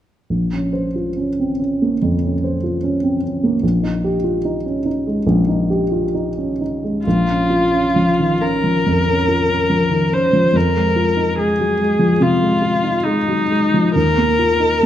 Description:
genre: classical, impressionist duo for viola and grand piano.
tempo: 70 BPM.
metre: 4/4.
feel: uneven beats, rubato.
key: Bb minor.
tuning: A4 = 439 Hz.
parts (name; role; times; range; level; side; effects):
dark baby grand piano; accompaniment; 0.3-14.9 s; Bb1 to C5; -16 LUFS; equal; none.
rich viola; melody; 7.1-14.9 s; Eb4 to C5; -17 LUFS; left 1 dB; none.
room: moderate concert hall reverb, RT60 1.7 s.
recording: close, detailed microphones.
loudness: -15 LUFS.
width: side -11 dB against mid.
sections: 0.3-7.1 A section; 7.1-14.9 B section.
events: none.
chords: 0.3 Bbmadd9; 3.6 Fm9/Bb; 7.1 Bbm; 10.6 Fm7; 13.9 Ebsus2.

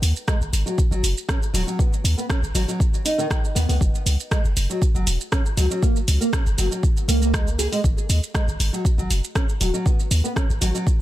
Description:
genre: afro house.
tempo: 119 BPM.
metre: 4/4.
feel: straight.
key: G# minor.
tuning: A4 = 438 Hz.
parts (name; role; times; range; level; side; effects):
warm 808-style bass; bass; 0.0-10.7 s; D#1 to D#2; -21 LUFS; equal; sidechain pumping.
deep house drum kit; drums; 0.0-11.0 s; hi-hat, rim click, shaker; -27 LUFS; right 1 dB; soft clipping on snare.
nylon-string guitar; arpeggios; 0.3-10.9 s; D#3 to G#4; -26 LUFS; equal; vintage 12-bit sampler grit, sidechain pumping, tape echo.
electronic kick drum; drums; 0.3-11.0 s; none; -21 LUFS; equal; none.
room: little or no reverb.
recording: dense, heavily limited modern master.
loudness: -19 LUFS.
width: side -14 dB against mid.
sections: 0.0-11.0 A section.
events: none.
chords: 0.0 G#m7; 3.8 F#; 7.8 G#7(no3).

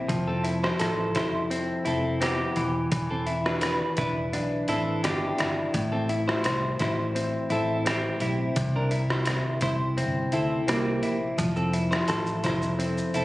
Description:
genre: indie pop, bedroom pop.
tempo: 85 BPM.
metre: 4/4.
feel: straight.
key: A minor.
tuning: A4 = 439 Hz.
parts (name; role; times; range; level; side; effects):
direct-recorded clean electric guitar; accompaniment; 0.0-13.2 s; A2 to C5; -27 LUFS; left 1 dB; wide subtle chorus, warbly pitch drift.
vintage muted fingered electric bass; bass; 0.0-13.2 s; E1 to D2; -32 LUFS; equal; none.
trip hop sampler-style drum kit; drums; 0.1-13.2 s; hi-hat, kick drum, rim click, shaker; -31 LUFS; equal; none.
clean electric guitar; second line; 0.3-13.2 s; Bb3 to C5; -32 LUFS; right 1 dB; wide subtle chorus, tape echo.
room: light reverb.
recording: recorded on a phone in the room, studio reverb, compression.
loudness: -24 LUFS.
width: side -18 dB against mid.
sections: 0.0-13.2 A section.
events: none.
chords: 0.1 Fmaj7; 2.6 Em7; 5.7 Am; 8.6 C7; 11.4 Fmaj7.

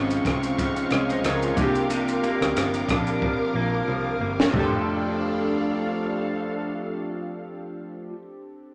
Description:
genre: indie pop, bedroom pop.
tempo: 91 BPM.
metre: 4/4.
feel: swing 55% on 16ths.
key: F major.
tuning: A4 = 440 Hz.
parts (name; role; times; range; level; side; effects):
chorused retro synth keys; accompaniment; 0.0-8.7 s; Bb3 to F5; -32 LUFS; equal; none.
electric guitar through a small old amp; accompaniment; 0.0-8.2 s; C3 to C5; -30 LUFS; equal; warbly pitch drift.
string machine, violas; sustained chords; 0.0-7.9 s; C4 to D6; -32 LUFS; equal; ensemble chorus.
vintage muted fingered electric bass; bass; 0.0-8.1 s; F1 to D2; -35 LUFS; equal; none.
compact cocktail drum kit; drums; 0.1-4.7 s; kick drum, ride cymbal, rim click, shaker, snare drum, toms; -29 LUFS; equal; none.
room: moderate large studio reverb, RT60 1.1 s.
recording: none.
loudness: -25 LUFS.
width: mono.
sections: 0.0-4.5 A section; 4.5-7.2 B section.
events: drum fill 3.2-4.5.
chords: 0.0 Dbmaj7; 1.6 C9sus4; 4.5 F6.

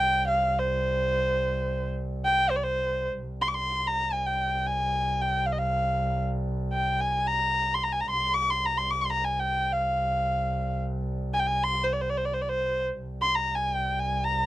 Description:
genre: Turkish makam ensemble.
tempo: free time.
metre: none.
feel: none.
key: C makam ussak.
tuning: A4 = 436 Hz.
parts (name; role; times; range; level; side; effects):
rich kamancheh; melody; 0.0-14.5 s; C5 to D6-26c; -25 LUFS; equal; none.
rich double bass; drone; 0.0-14.5 s; C2; -31 LUFS; equal; stereo widening.
room: little or no reverb.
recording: dry, close 1970s-style studio recording.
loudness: -25 LUFS.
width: side -15 dB against mid.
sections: 0.0-3.2 A section; 3.2-13.0 A section; 13.0-14.5 A section.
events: none.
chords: none.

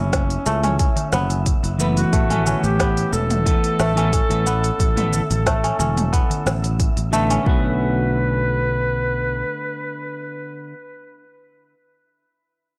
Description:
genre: organic downtempo.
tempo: 90 BPM.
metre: 4/4.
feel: straight.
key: B minor.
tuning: A4 = 441 Hz.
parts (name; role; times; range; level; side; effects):
warm duduk; melody; 0.0-10.8 s; C#4 to B4; -28 LUFS; equal; tape echo.
kora; arpeggios; 0.0-9.3 s; A3 to C#5; -28 LUFS; equal; tape echo.
sustaining fretless electric bass; bass; 0.0-9.4 s; E1 to C#2; -24 LUFS; equal; sidechain pumping.
wind-like tuned noise texture; texture; 0.0-7.5 s; E4 to E5; -40 LUFS; equal; built-in reverb.
electronic kick drum; drums; 0.1-7.6 s; none; -22 LUFS; equal; small room ambience.
organic electronic drum kit; drums; 0.1-7.4 s; hi-hat, shaker, snare drum, toms; -27 LUFS; equal; small room ambience.
darbuka; percussion; 0.5-7.1 s; none; -34 LUFS; equal; none.
semi-hollow electric guitar; accompaniment; 1.8-10.8 s; D3 to B4; -27 LUFS; equal; sidechain pumping.
room: little or no reverb.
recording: dry, gritty hardware recording.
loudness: -20 LUFS.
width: mono.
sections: 0.0-7.5 A section; 7.5-10.1 B section.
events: none.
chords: 0.0 F#m7; 2.1 Asus2; 7.5 Bm7.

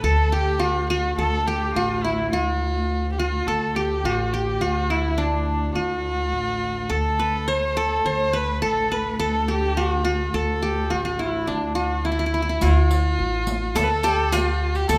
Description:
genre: Arabic maqam ensemble.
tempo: 105 BPM.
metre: 4/4.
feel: straight.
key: D maqam rast.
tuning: A4 = 440 Hz.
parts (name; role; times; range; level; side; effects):
qanun; melody; 0.0-15.0 s; D4 to C5+50c; -26 LUFS; equal; none.
dark violin; second line; 0.0-15.0 s; D4 to C#5-50c; -29 LUFS; equal; none.
upright bass; bass; 0.0-15.0 s; A1 to D2; -28 LUFS; equal; none.
dark symphonic cello section; drone; 0.0-12.7 s; D2; -34 LUFS; equal; none.
riq; percussion; 12.6-15.0 s; none; -33 LUFS; equal; none.
room: moderate recital hall reverb, RT60 1.4 s.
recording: none.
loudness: -23 LUFS.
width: mono.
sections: 0.0-12.6 A section; 12.6-15.0 B section.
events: none.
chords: none.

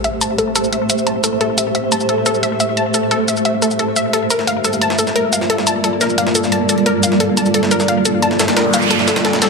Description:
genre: dark technical drum and bass.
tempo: 176 BPM.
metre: 4/4.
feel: straight.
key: unclear.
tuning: A4 = 439 Hz.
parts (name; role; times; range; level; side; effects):
dark analog pad; sustained chords; 0.0-9.5 s; G3 to C5; -27 LUFS; right 1 dB; chorus.
wide unison pluck; arpeggios; 0.0-9.5 s; A4 to A5; -19 LUFS; left 2 dB; ping-pong delay.
electronic hi-hat and cabasa; drums; 0.0-9.5 s; none; -19 LUFS; equal; none.
impact and noise sweep; sound effects; 0.0, 8.5-9.5 s; none; -21 LUFS; right 3 dB; none.
granular cloud pad; texture; 0.0-9.5 s; G3 to E5; -17 LUFS; right 1 dB; built-in reverb.
jungle sampler-style drum kit; drums; 4.1-9.5 s; hi-hat, snare drum; -23 LUFS; equal; high-pass filter on hats, high-pass filter on snare.
room: wet lush hall reverb, RT60 2.0 s, digital ambience.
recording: none.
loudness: -13 LUFS.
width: side -3 dB against mid.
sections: 0.0-9.5 A section.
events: noise sweep 8.5-9.5.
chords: 0.0 Am; 4.1 Gm.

